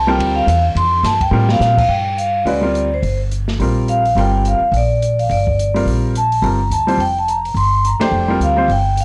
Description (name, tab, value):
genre	modal jazz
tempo	212 BPM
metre	4/4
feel	swing 59% on 8ths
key	G minor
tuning	A4 = 439 Hz
part	vibraphone with medium mallets	melody	0.0-9.0 s	C5 to C6	-19 LUFS	equal	none
part	upright bass	bass	0.0-9.0 s	F1 to Bb2	-20 LUFS	equal	tube saturation
part	clear concert grand piano	accompaniment	0.1-8.7 s	G3 to C5	-22 LUFS	equal	none
part	open jazz drum kit	drums	0.2-9.0 s	crash cymbal, hi-hat, kick drum, ride cymbal, snare drum	-29 LUFS	equal	none
room	light reverb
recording	dry, gritty hardware recording, cassette tape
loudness	-16 LUFS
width	mono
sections	0.0-1.9 A section; 1.9-9.0 B section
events	vibraphone solo 0.0-1.9; drum fill 1.3; band accent 8.0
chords	0.0 Bbsus2; 1.9 Gm11; 6.4 Bbsus2